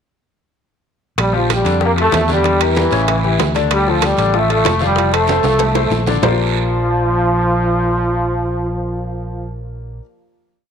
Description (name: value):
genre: latin, salsa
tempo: 190 BPM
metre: 4/4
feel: straight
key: Bb major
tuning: A4 = 440 Hz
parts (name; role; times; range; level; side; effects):
- warm trombone section; melody; 1.2-9.5 s; E3 to Bb3; -17 LUFS; equal; none
- fingered electric bass; bass; 1.2-10.0 s; F1 to F2; -19 LUFS; right 1 dB; none
- bongos; percussion; 1.2-6.3 s; none; -26 LUFS; left 12 dB; none
- congas; percussion; 1.2-6.3 s; none; -28 LUFS; right 1 dB; none
- guiro; percussion; 1.2-6.3 s; none; -28 LUFS; right 14 dB; none
- timbales; percussion; 1.2-6.3 s; none; -23 LUFS; right 14 dB; none
- clear grand piano; accompaniment; 1.3-10.0 s; Db3 to F5; -21 LUFS; left 11 dB; none
room: moderate echo chamber reverb, RT60 1.8 s, studio reverb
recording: 1960s-style stereo with parts hard left and right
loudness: -13 LUFS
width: side -7 dB against mid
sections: 1.2-6.2 verse; 6.2-8.8 final chord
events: drum fill 5.3-6.2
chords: 1.2 Bb6; 2.4 Em7b5; 3.1 A7; 3.7 Dm; 5.0 F; 6.2 Bb69